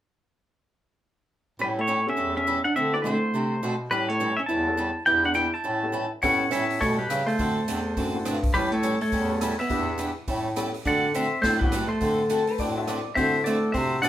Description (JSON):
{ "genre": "country, western swing", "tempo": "208 BPM", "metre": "4/4", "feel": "swing 62% on 8ths", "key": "unclear", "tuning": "A4 = 439 Hz", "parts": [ { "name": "pedal steel guitar", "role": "melody", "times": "1.6-14.1 s", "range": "G4 to A5", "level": "-26 LUFS", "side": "left 1 dB", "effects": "none" }, { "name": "archtop guitar, miked and amplified", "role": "second line", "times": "1.6-14.1 s", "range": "F#3 to E4", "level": "-29 LUFS", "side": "right 1 dB", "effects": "none" }, { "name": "picked swing-style acoustic guitar", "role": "accompaniment", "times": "1.6-14.1 s", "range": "D3 to A4", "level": "-32 LUFS", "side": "right 2 dB", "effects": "none" }, { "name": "clear bass clarinet", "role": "bass", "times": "1.6-14.1 s", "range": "E2 to D3", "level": "-30 LUFS", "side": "equal", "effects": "none" }, { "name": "clear upright piano", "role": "accompaniment", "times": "2.1-14.0 s", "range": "B3 to A4", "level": "-35 LUFS", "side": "left 3 dB", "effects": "none" }, { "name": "swinging big-band drum kit", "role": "drums", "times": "6.2-14.1 s", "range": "hi-hat, kick drum, rim click, snare drum", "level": "-32 LUFS", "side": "equal", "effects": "none" }, { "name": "clean lap steel guitar", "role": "second line", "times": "12.3-13.1 s", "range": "A4 to E5", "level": "-28 LUFS", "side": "left 5 dB", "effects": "none" } ], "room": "wet small room reverb, RT60 0.5 s", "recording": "band playing live in one room", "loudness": "-22 LUFS", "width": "side -12 dB against mid", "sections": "1.6-6.2 A section; 6.2-14.1 B section", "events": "none", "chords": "1.6 A9; 2.8 D9; 3.9 A7; 5.1 Em7; 5.7 A9; 7.4 D9; 8.5 A9; 9.7 Em7; 10.3 A9; 10.9 D9", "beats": "| 1.60 1.89 2.18 2.47 | 2.76 3.04 3.33 3.62 | 3.91 4.20 4.49 4.78 | 5.07 5.36 5.65 5.94 | 6.23 6.52 6.81 7.10 | 7.39 7.68 7.96 8.25 | 8.54 8.83 9.12 9.41 | 9.70 9.99 10.28 10.57 | 10.85 11.14 11.43 11.72 | 12.01 12.30 12.59 12.88 | 13.16 13.45 13.74 14.03" }